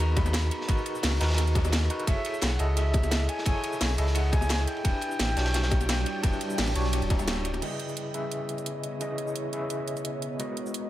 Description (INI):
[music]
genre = liquid drum and bass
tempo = 173 BPM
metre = 4/4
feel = swing 53% on 16ths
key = unclear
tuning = A4 = 440 Hz
[part]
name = bright reedy concert flute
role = melody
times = 0.0-7.3 s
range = E5 to B5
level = -36 LUFS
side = left 1 dB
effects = tape echo
[part]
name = overdriven tine electric piano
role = accompaniment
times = 0.0-10.9 s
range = C#3 to E5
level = -33 LUFS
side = equal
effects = fast tremolo, analog delay
[part]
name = ethereal airy pad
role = sustained chords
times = 0.1-10.9 s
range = G3 to A#5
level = -38 LUFS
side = right 1 dB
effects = ensemble chorus, built-in reverb, sidechain pumping
[part]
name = sub bass with octave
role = bass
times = 0.0-7.6 s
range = D1 to D#2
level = -27 LUFS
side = equal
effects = none
[part]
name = crunchy breakbeat drum kit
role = drums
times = 0.2-7.6 s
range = hi-hat, ride cymbal, snare drum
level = -35 LUFS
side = equal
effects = high-pass filter on cymbals, small room ambience, high-pass filter on hats, high-pass filter on snare, high-pass filter on room, analog delay
[part]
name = drum and bass drum kit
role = drums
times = 0.2-10.8 s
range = cabasa, crash cymbal, hi-hat, snare drum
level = -33 LUFS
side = right 1 dB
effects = overdrive, small room ambience, analog delay
[part]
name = electronic kick drum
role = drums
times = 0.2-7.2 s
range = none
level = -26 LUFS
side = equal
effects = overdrive, small room ambience
[part]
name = bongos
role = percussion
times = 0.2-7.6 s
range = none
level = -37 LUFS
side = left 5 dB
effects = none
[sound]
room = moderate spring reverb, RT60 1.1 s, small room reverb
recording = echo-heavy mix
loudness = -25 LUFS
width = side -14 dB against mid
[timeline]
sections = 0.0-7.6 A section; 7.6-10.9 B section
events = drop 0.0-7.6; band accent 7.3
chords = 0.0 G#m9; 2.1 F#m9 (rootless); 4.8 Em9; 7.6 C#m9; 10.4 G#m9